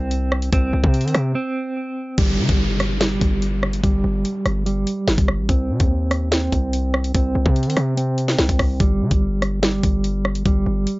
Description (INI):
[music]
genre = hip hop, drill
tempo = 145 BPM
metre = 4/4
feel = half-time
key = unclear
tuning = A4 = 440 Hz
[part]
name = mellow electric guitar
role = arpeggios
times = 0.0-11.0 s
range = G3 to C4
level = -23 LUFS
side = right 2 dB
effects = tremolo, low-pass filter, tape echo
[part]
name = hard-hitting 808-style bass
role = bass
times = 0.0-10.9 s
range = G1 to Eb3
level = -21 LUFS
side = equal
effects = none
[part]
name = drill drum kit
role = drums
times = 0.1-11.0 s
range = crash cymbal, hi-hat, kick drum, rim click, snare drum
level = -20 LUFS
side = equal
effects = none
[part]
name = downlifter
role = sound effects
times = 2.2-5.5 s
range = none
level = -29 LUFS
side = equal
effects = none
[sound]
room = little or no reverb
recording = dry, gritty hardware recording, nothing above 7.6 kHz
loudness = -17 LUFS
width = side -21 dB against mid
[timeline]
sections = 0.0-2.2 A section; 2.2-11.0 B section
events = break 1.4-2.2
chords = 0.0 N.C.; 5.5 Cm; 8.8 N.C.